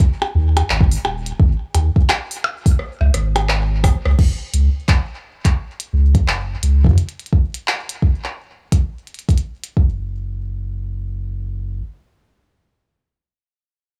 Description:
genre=IDM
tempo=86 BPM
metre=4/4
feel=swing 62% on 16ths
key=unclear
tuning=A4 = 441 Hz
part: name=electronic kick drum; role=drums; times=0.0-9.9 s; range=none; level=-17 LUFS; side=equal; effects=none
part: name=glitchy drum kit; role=drums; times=0.0-9.7 s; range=crash cymbal, handclaps, hi-hat, percussion blips, rim click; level=-24 LUFS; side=equal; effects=digital delay
part: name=warm sub bass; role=bass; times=0.3-11.8 s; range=D#1 to D#2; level=-20 LUFS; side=equal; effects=none
room=little or no reverb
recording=none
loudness=-18 LUFS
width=mono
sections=0.0-4.2 A section; 4.2-9.8 B section; 9.8-12.6 C section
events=drum fill 2.8-4.2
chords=none

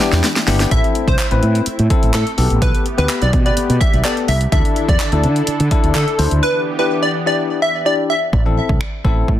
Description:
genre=dance-pop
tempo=126 BPM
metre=4/4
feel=straight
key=A minor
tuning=A4 = 440 Hz
part: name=barky tine electric piano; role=accompaniment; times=0.0-9.3 s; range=B3 to C5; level=-22 LUFS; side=left 7 dB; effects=sidechain pumping
part: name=warm analog pad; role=sustained chords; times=0.0-8.3 s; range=D3 to A4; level=-26 LUFS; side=right 2 dB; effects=lush chorus, sidechain pumping
part: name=deep house drum kit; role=drums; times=0.0-9.4 s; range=finger snaps, handclaps, hi-hat, kick drum, snare drum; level=-17 LUFS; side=equal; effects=soft clipping on snare
part: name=mellow fretless electric bass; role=bass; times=0.1-9.4 s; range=G1 to D3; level=-16 LUFS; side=equal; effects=sidechain pumping
part: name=plucky unison lead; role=melody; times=0.7-8.2 s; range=A4 to E5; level=-20 LUFS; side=equal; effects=sidechain pumping, digital delay
room=little or no reverb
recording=dense, heavily limited modern master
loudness=-13 LUFS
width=side -12 dB against mid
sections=0.7-8.3 A section; 8.3-9.4 B section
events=drum fill 0.0-0.7; drums muted 6.4-8.3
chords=0.0 Em7; 0.7 Am; 2.4 Gadd9; 4.5 Dsus2; 6.4 Em7; 8.3 Am

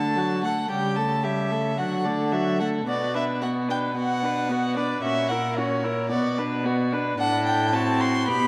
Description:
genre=quick classical-period movement for string quartet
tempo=111 BPM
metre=4/4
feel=straight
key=unclear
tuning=A4 = 442 Hz
part: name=warm violin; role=melody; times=0.0-8.5 s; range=C#5 to C6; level=-30 LUFS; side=equal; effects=none
part: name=dark violin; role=second line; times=0.0-8.5 s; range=F#4 to B4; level=-32 LUFS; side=equal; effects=none
part: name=warm viola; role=accompaniment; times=0.0-8.5 s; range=F#3 to E4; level=-30 LUFS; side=equal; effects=none
part: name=warm cello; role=bass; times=0.0-8.5 s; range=A2 to D3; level=-31 LUFS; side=equal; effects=none
room=wet scoring stage reverb, RT60 1.6 s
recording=none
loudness=-25 LUFS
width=mono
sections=0.0-8.5 A section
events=none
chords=0.0 D; 0.7 A7/C#; 1.8 D; 2.9 Bm; 5.0 F#7/A#; 6.1 Bm; 7.2 D7/A

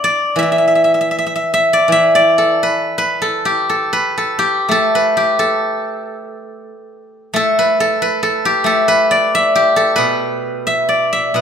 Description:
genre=chinese traditional, Chinese solo plucked strings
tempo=75-93 BPM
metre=4/4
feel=rubato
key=E yu mode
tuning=A4 = 440 Hz
part: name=steel-string zither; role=solo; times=0.0-11.4 s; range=B2 to E5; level=-12 LUFS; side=equal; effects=none
room=moderate recital hall reverb, RT60 1.4 s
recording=minimal, uncompressed stereo recording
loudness=-12 LUFS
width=side -7 dB against mid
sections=0.0-1.9 A section; 1.9-11.4 B section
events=none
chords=none

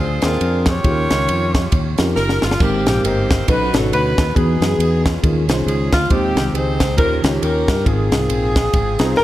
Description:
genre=uptempo gospel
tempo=137 BPM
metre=4/4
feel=swing 59% on 8ths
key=Ab major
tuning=A4 = 440 Hz
part: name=clear saxophone section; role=melody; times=0.0-9.2 s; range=G#3 to Db5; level=-20 LUFS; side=equal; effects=tape echo
part: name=fingered electric bass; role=bass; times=0.0-9.2 s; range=Gb1 to G2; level=-21 LUFS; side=equal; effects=none
part: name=mellow tine electric piano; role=accompaniment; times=0.2-9.2 s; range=Ab2 to Bb5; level=-22 LUFS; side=equal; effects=medium stereo tremolo
part: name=crisp fusion drum kit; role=drums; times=0.2-9.2 s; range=crash cymbal, kick drum, ride cymbal, snare drum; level=-19 LUFS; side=equal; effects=none
part: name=warm baby grand piano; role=melody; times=9.2 s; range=Bb4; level=-12 LUFS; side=left 2 dB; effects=none
room=moderate plate reverb, RT60 2.4 s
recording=dreamy mix soaked in reverb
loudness=-14 LUFS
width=side -14 dB against mid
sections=0.0-9.2 A section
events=drum fill 2.2-2.6; tine electric piano fill 8.7-9.2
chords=0.0 Bb13; 0.8 Eb9; 2.6 Abmaj9; 3.5 B9; 4.4 Emaj9; 5.2 Eb9sus4; 6.1 Ab; 7.0 Eb13; 7.9 Ab69

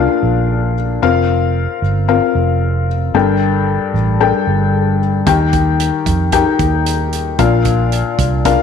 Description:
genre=piano-driven pop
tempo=113 BPM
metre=4/4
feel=straight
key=Bb major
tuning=A4 = 440 Hz
part: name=felt-muted upright piano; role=accompaniment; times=0.0-8.6 s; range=G2 to G5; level=-14 LUFS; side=left 8 dB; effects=none
part: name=vintage muted fingered electric bass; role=bass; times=0.0-8.6 s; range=F1 to F2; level=-16 LUFS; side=right 2 dB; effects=none
part: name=natural country drum kit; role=drums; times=5.3-8.6 s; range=hi-hat, kick drum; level=-20 LUFS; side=right 6 dB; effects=none
room=light reverb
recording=1960s-style stereo with parts hard left and right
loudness=-12 LUFS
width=side -7 dB against mid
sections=0.0-8.6 A section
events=none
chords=0.0 Bb; 1.0 Fsus4; 3.1 Gmadd9; 5.3 Eb; 7.4 Bb

